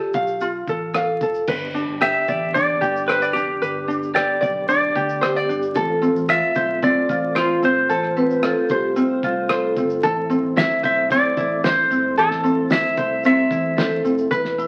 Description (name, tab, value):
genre	acoustic pop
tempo	112 BPM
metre	4/4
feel	straight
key	A minor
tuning	A4 = 440 Hz
part	vibraphone with medium mallets	second line	0.0-1.4, 5.2-10.4, 13.8-14.7 s	F4 to B4	-26 LUFS	equal	none
part	ukulele	accompaniment	0.0-14.7 s	C4 to F5	-24 LUFS	equal	none
part	vintage muted fingered electric bass	bass	0.1-14.7 s	E1 to E2	-37 LUFS	equal	none
part	cloth-damped thuddy drum kit	drums	0.1-14.7 s	crash cymbal, kick drum, rim click, shaker, snare drum	-28 LUFS	equal	none
part	tonewheel organ	sustained chords	1.5-14.7 s	B2 to G4	-32 LUFS	equal	chorus vibrato, slow rotary speaker
part	clean lap steel guitar	melody	2.0-14.0 s	F4 to E5	-22 LUFS	equal	none
room	wet studio reverb, RT60 0.7 s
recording	very old 78 rpm record, vinyl crackle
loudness	-20 LUFS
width	mono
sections	0.0-1.5 A section; 1.5-14.7 B section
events	none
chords	0.0 Dm; 1.5 G; 5.8 F; 10.0 Am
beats	0.41 0.95 | 1.48 2.02 2.55 3.09 | 3.62 4.16 4.69 5.23 | 5.76 6.30 6.83 7.37 | 7.90 8.44 8.97 9.50 | 10.04 10.57 11.11 11.64 | 12.17 12.71 13.24 13.78 | 14.31